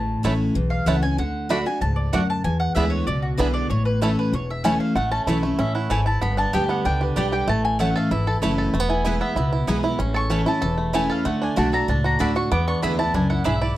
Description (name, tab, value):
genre	bluegrass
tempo	191 BPM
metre	4/4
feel	straight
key	A major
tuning	A4 = 440 Hz
part	mandolin	melody	0.0-13.8 s	F#4 to D6	-26 LUFS	left 1 dB	none
part	picked steel-string acoustic guitar	accompaniment	0.0-13.8 s	E2 to G4	-24 LUFS	left 1 dB	none
part	upright bass	bass	0.0-13.7 s	E1 to E2	-25 LUFS	equal	none
part	bluegrass banjo	arpeggios	0.2-13.8 s	E3 to A4	-26 LUFS	right 4 dB	none
part	mandolin	stabs	0.2-13.5 s	A3 to B5	-31 LUFS	right 4 dB	slapback echo
room	small room reverb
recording	dry, close 1970s-style studio recording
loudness	-19 LUFS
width	side -14 dB against mid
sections	0.0-5.0 A section; 5.0-13.8 A section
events	mandolin solo 0.0-13.8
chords	0.0 A; 1.2 D; 2.4 E7; 3.7 A; 6.2 G; 7.5 A; 8.7 E; 10.0 A; 11.3 D; 12.5 E7